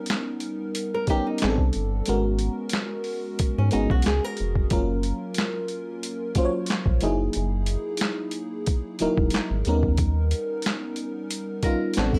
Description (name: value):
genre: R&B, neo-soul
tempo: 91 BPM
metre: 4/4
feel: straight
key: unclear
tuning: A4 = 440 Hz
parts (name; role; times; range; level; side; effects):
- FM electric piano with soft pad layer; accompaniment; 0.0-12.2 s; F#3 to C#5; -29 LUFS; equal; chorus, plate reverb
- boom bap sampler-style drum kit; drums; 0.1-12.2 s; handclaps, hi-hat, kick drum, snare drum; -28 LUFS; equal; overdrive
- flamenco guitar; second line; 0.9-4.7, 11.6-12.2 s; C#4 to A#4; -32 LUFS; equal; plate reverb
- rubbery square bass; bass; 1.4-12.2 s; E1 to G#2; -27 LUFS; equal; none
room: light reverb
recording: none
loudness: -25 LUFS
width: mono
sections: 0.0-12.2 A section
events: none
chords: 0.0 D#7b13; 1.4 Am11; 2.1 G#m11; 4.7 F#maj7; 7.0 F#13; 9.7 D#7b13